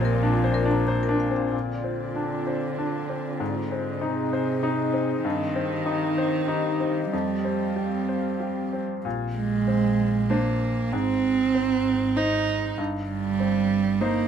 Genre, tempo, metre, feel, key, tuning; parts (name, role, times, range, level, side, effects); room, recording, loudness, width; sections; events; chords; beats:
neoclassical piano and strings; 96 BPM; 3/4; rubato; Bb mixolydian; A4 = 440 Hz
warm cello; second line; 0.0-14.3 s; Bb2 to Eb4; -26 LUFS; right 6 dB
bright upright piano; accompaniment; 0.0-14.3 s; F2 to C5; -27 LUFS; left 4 dB
evolving wavetable pad; sustained chords; 0.0-9.0 s; C4 to F5; -32 LUFS; left 1 dB; chorus, built-in reverb
marimba with medium hard mallets; arpeggios; 0.0-1.5 s; Bb4 to Bb5; -32 LUFS; left 5 dB; slapback echo
warm double bass; bass; 0.0-1.5, 9.1-14.3 s; G1 to Bb1; -28 LUFS; left 1 dB
light reverb; -22 LUFS; side -8 dB against mid
0.0-1.5 A section; 1.5-9.1 B section; 9.1-14.3 C section
0.0 Bbadd9; 3.4 Ab; 5.2 Cm/G; 7.1 Fsus2; 9.1 Bbadd9; 10.9 Ab; 12.8 Cm/G
0.23 0.88 | 1.53 2.16 2.78 | 3.40 4.02 4.63 | 5.25 5.86 6.48 | 7.12 7.77 8.41 | 9.05 9.68 10.30 | 10.93 11.55 12.17 | 12.79 13.40 14.01